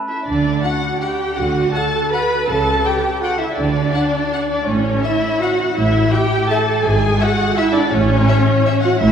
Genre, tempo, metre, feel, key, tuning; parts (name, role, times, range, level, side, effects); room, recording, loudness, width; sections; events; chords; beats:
classical; 165 BPM; 3/4; uneven beats, rubato; D major; A4 = 435 Hz
warm studio violin section; second line; 0.1-9.1 s; C#5 to B5; -21 LUFS; left 2 dB
warm studio viola section; accompaniment; 0.1-9.1 s; C#4 to B4; -18 LUFS; right 2 dB
rich studio double bass section; bass; 0.3-9.1 s; G#1 to D2; -21 LUFS; equal
warm studio cello section; bass; 0.3-9.1 s; G#2 to D3; -22 LUFS; right 2 dB
warm studio violin section; melody; 0.6-8.7 s; E5 to G5; -29 LUFS; left 5 dB
wet cathedral reverb, RT60 4.2 s; recorded in a church or concert hall; -14 LUFS; side -8 dB against mid
0.3-9.1 A section
0.3 D; 2.5 A7/C#; 3.6 N.C.; 4.7 A; 6.9 E/G#; 7.9 A
| 0.28 0.65 1.03 | 1.39 1.75 2.14 | 2.50 2.86 3.24 | 3.59 3.95 4.33 | 4.68 5.04 5.42 | 5.78 6.14 6.51 | 6.86 7.21 7.58 | 7.93 8.29 8.66 | 9.01